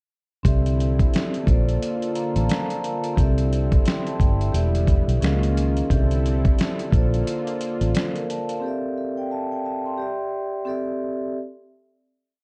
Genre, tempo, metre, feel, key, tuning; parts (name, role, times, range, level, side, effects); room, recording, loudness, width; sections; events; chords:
lo-fi hip hop; 88 BPM; 4/4; swing 59% on 16ths; C major; A4 = 440 Hz
vibraphone with medium mallets; accompaniment; 0.4-11.4 s; Bb3 to C6; -29 LUFS; equal; cassette tape, plate reverb
vintage muted fingered electric bass; bass; 0.4-7.9 s; E1 to Db2; -24 LUFS; equal
dusty soul sampler-style drum kit; drums; 0.4-8.6 s; finger snaps, hi-hat, kick drum, snare drum; -24 LUFS; equal
warm analog pad; sustained chords; 0.5-8.6 s; D3 to A4; -34 LUFS; equal; chorus
light reverb; dark, warm production; -23 LUFS; mono
0.5-11.4 A section
0.5 C69; 1.5 Bbmaj7; 3.2 C69; 4.5 Em7; 5.2 Db69; 5.9 C69; 6.9 Bbmaj7; 8.6 C69; 10.0 Em7; 10.7 C6